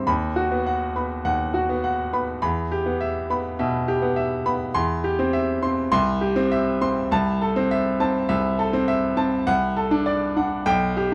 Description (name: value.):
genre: classical, virtuoso piano study.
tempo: 102 BPM.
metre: 4/4.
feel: rubato.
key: unclear.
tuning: A4 = 440 Hz.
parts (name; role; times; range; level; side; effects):
bright grand piano; solo; 0.0-11.1 s; B1 to C6; -23 LUFS; equal; none.
room: light reverb.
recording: dark, warm production.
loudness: -23 LUFS.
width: mono.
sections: 0.0-11.1 A section.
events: none.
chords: 0.1 B/D#; 2.4 Em; 4.8 C/E; 5.9 C; 7.1 Am/C; 9.5 D7/C.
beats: | 0.07 0.66 1.25 1.83 | 2.42 3.00 3.59 4.17 | 4.75 5.33 5.92 6.51 | 7.11 7.70 8.29 8.88 | 9.47 10.06 10.66.